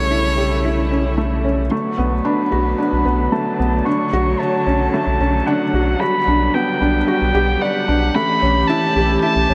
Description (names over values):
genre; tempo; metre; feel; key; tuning
piano and strings electronica; 112 BPM; 4/4; straight; B minor; A4 = 440 Hz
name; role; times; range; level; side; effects
warm violin; melody; 0.0-9.5 s; C#5 to C#6; -23 LUFS; equal; low-pass filter
dark string quartet; sustained chords; 0.0-9.5 s; C#3 to C#5; -24 LUFS; equal; none
felt-muted upright piano; riff; 0.0-9.5 s; A3 to D5; -22 LUFS; equal; none
round analog bass; bass; 0.0-9.5 s; B1; -23 LUFS; equal; none
room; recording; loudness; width
moderate huge ambient reverb, RT60 4.1 s; none; -18 LUFS; mono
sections
0.0-1.7 A section; 1.7-9.5 B section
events
filter sweep on felt piano 0.0-1.7; build-up 1.7-9.5; filter sweep on violin 1.7-9.5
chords
0.0 A7/B; 1.7 Bm7; 3.9 Dmaj7/B; 6.0 Gmaj7/B; 8.2 A7/B